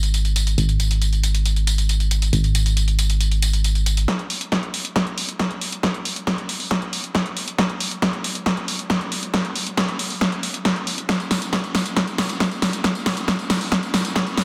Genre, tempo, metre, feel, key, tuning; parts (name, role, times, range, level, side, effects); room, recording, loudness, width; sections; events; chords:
uplifting trance; 137 BPM; 4/4; straight; A4 = 440 Hz
solid FM bass; bass; 0.0-4.1 s; Ab1; -20 LUFS; equal; sidechain pumping
punchy analog drum machine; drums; 0.0-14.4 s; hi-hat, snare drum, tambourine; -24 LUFS; equal; sidechain pumping on hats, sidechain pumping on perc
electronic kick drum; drums; 4.1-14.2 s; -32 LUFS; equal; high-pass filter on kick, high-pass filter on room
moderate lush hall reverb, RT60 1.7 s; dense, heavily limited modern master; -22 LUFS; mono
0.0-4.1 A section; 4.1-14.4 B section
build-up 4.1-14.4; drum fill 4.1-14.4